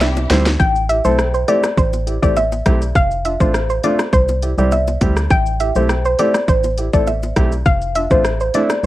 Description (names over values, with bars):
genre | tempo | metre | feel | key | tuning
dancehall | 102 BPM | 4/4 | straight | A minor | A4 = 436 Hz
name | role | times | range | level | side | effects
soft round pluck | melody | 0.0-8.9 s | C5 to G5 | -18 LUFS | left 1 dB | chorus, cassette tape, analog delay
warm symphonic string section | sustained chords | 0.0-0.6 s | C3 to G4 | -28 LUFS | left 1 dB | sidechain pumping
organ-like FM bass | bass | 0.0-8.9 s | F1 to D2 | -19 LUFS | equal | none
island pop drum kit | drums | 0.0-8.9 s | hi-hat, kick drum, rim click, shaker, snare drum | -18 LUFS | equal | overdrive, cassette tape
bongos | percussion | 0.0-8.8 s | none | -28 LUFS | left 5 dB | none
warm grand piano | accompaniment | 0.3-8.7 s | G3 to C5 | -21 LUFS | right 3 dB | sidechain pumping
room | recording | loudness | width
light reverb | home recording on cassette | -14 LUFS | side -16 dB against mid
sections
0.6-8.9 A section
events
drum fill 0.0-0.6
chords
0.0 C; 0.6 Am7; 3.0 F6; 4.1 C; 5.3 Am7; 7.7 F6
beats
0.01 | 0.60 1.19 1.78 2.37 | 2.95 3.54 4.13 4.72 | 5.31 5.89 6.48 7.07 | 7.66 8.25 8.84